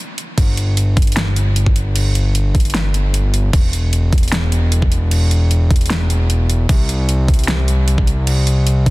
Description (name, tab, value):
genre	future bass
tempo	152 BPM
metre	4/4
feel	half-time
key	unclear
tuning	A4 = 440 Hz
part	pop drum kit	drums	0.2-8.9 s	crash cymbal, hi-hat, snare drum	-22 LUFS	equal	overdrive
part	fat analog bass	bass	0.4-8.9 s	E1 to C2	-15 LUFS	equal	sidechain pumping
part	electronic kick drum	drums	0.4-8.9 s	none	-14 LUFS	equal	overdrive
room	little or no reverb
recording	dense, heavily limited modern master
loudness	-13 LUFS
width	side -21 dB against mid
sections	0.0-8.9 A section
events	break 0.0-0.4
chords	none